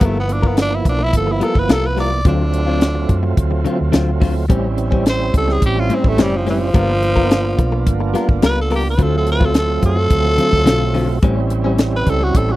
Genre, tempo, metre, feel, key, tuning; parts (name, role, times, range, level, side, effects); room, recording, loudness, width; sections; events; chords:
straight-eighth soul blues; 107 BPM; 4/4; straight; A4 = 437 Hz
growling tenor saxophone; melody; 0.0-12.6 s; F3 to D5; -20 LUFS; equal
tonewheel organ; accompaniment; 0.0-12.6 s; F3 to E#4; -22 LUFS; right 6 dB; slow rotary speaker, overdrive
direct-recorded clean electric guitar; stabs; 0.0-12.5 s; A2 to A#4; -21 LUFS; left 4 dB
hollow-body short-scale fingered electric bass; bass; 0.0-12.6 s; F#1 to F#2; -19 LUFS; equal
tight funk drum kit; drums; 0.0-12.5 s; hi-hat, kick drum, snare drum; -15 LUFS; equal
little or no reverb; dry, close 1970s-style studio recording; -14 LUFS; side -16 dB against mid
0.0-12.6 A section
tenor saxophone solo 0.0-12.6
0.0 G7#9; 2.3 D7#9; 4.5 A7#9; 6.7 G7#9; 9.0 D7#9; 11.2 A7#9